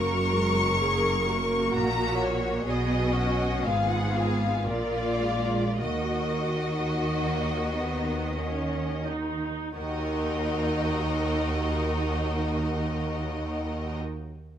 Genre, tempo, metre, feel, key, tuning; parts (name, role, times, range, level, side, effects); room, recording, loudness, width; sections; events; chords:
classical, slow romantic movement for string orchestra; 42-66 BPM; 3/4; rubato; Eb minor; A4 = 439 Hz
rich studio violin section; melody; 0.0-14.0 s; Db5 to Db6; -31 LUFS; left 3 dB
clear studio violin section; second line; 0.0-14.0 s; F4 to Bb4; -33 LUFS; left 3 dB
rich studio viola section; accompaniment; 0.0-14.0 s; Eb3 to Ab4; -30 LUFS; right 2 dB
rich studio cello section; bass; 0.0-14.0 s; Eb2 to Eb3; -32 LUFS; right 1 dB
rich studio double bass section; bass; 0.0-14.0 s; Gb1 to Eb2; -32 LUFS; right 1 dB
moderate large studio reverb, RT60 1.2 s; -25 LUFS; side -9 dB against mid
0.0-9.8 A section; 9.8-13.8 B section
slowing down 1.3-9.8
0.0 Gb; 2.7 B; 3.6 Fdim/Ab; 4.7 Bb; 5.8 Ebm